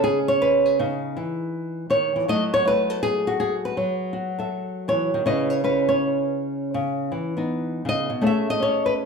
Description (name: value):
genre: solo jazz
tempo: 161 BPM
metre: 4/4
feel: swing 66% on 8ths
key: C# minor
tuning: A4 = 440 Hz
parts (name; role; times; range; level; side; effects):
- flamenco guitar; solo; 0.0-9.1 s; B2 to E5; -20 LUFS; equal; none
room: wet large studio reverb, RT60 0.8 s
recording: band playing live in one room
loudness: -21 LUFS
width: side -5 dB against mid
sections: 0.0-9.1 A section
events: none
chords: 0.0 C#m9; 2.3 F#m9; 5.2 C#m9; 8.2 Amaj7